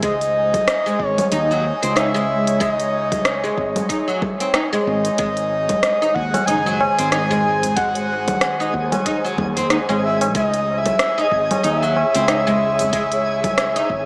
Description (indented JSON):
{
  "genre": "organic downtempo",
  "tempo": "93 BPM",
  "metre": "4/4",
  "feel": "swing 58% on 16ths",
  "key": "unclear",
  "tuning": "A4 = 439 Hz",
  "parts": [
    { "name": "breathy flute-like synth lead", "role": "melody", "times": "0.0-14.1 s", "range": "C#5 to G#5", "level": "-20 LUFS", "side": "equal", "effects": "wide subtle chorus, tape echo" },
    { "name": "airy breathy pad", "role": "sustained chords", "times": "0.0-14.1 s", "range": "D#3 to G#5", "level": "-27 LUFS", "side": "equal", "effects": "chorus, sidechain pumping" },
    { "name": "oud", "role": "arpeggios", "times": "0.0-13.9 s", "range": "F#3 to D#4", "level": "-23 LUFS", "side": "equal", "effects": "dub echo" },
    { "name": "fretless electric bass", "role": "bass", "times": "0.0-14.1 s", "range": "F#1 to D#2", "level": "-26 LUFS", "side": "equal", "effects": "sidechain pumping" },
    { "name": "electronic kick drum", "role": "drums", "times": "0.0-14.0 s", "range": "none", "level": "-29 LUFS", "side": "equal", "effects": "none" },
    { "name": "organic electronic drum kit", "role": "drums", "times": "0.0-13.9 s", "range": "cabasa, congas, hi-hat, rim click", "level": "-22 LUFS", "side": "equal", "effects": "none" },
    { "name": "twinkling granular texture", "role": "texture", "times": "5.8-14.1 s", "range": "G#4 to G#5", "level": "-30 LUFS", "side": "equal", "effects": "built-in reverb" },
    { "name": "tabla", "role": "percussion", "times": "5.4-14.1 s", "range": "none", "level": "-27 LUFS", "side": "equal", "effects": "dub echo" }
  ],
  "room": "moderate echo chamber reverb, RT60 2.2 s",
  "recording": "echo-heavy mix, small speaker sound",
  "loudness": "-16 LUFS",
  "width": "side -37 dB against mid",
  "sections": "0.0-14.1 A section",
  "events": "none",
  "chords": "0.0 C#madd9; 5.2 G#7; 10.3 C#madd9",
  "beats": "| 0.03 0.67 1.32 1.96 | 2.61 3.25 3.90 4.54 | 5.19 5.83 6.48 7.12 | 7.77 8.41 9.06 9.70 | 10.35 10.99 11.64 12.29 | 12.93 13.57"
}